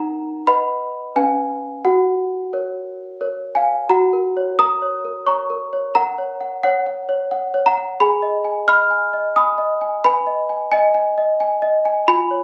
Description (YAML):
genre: classical, lullaby for celesta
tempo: 88 BPM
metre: 3/4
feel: straight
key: F# major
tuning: A4 = 442 Hz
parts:
  - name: small celesta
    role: solo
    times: 0.0-12.4 s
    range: C#4 to E#6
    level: -19 LUFS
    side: equal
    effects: none
room: little or no reverb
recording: recorded on a phone in the room, club reverb, compression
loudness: -19 LUFS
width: mono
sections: 0.0-3.9 A section; 3.9-12.4 B section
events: none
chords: 0.5 B; 1.2 C#7; 1.8 F#; 5.9 F#/A#; 8.0 G#m; 10.0 G#m/B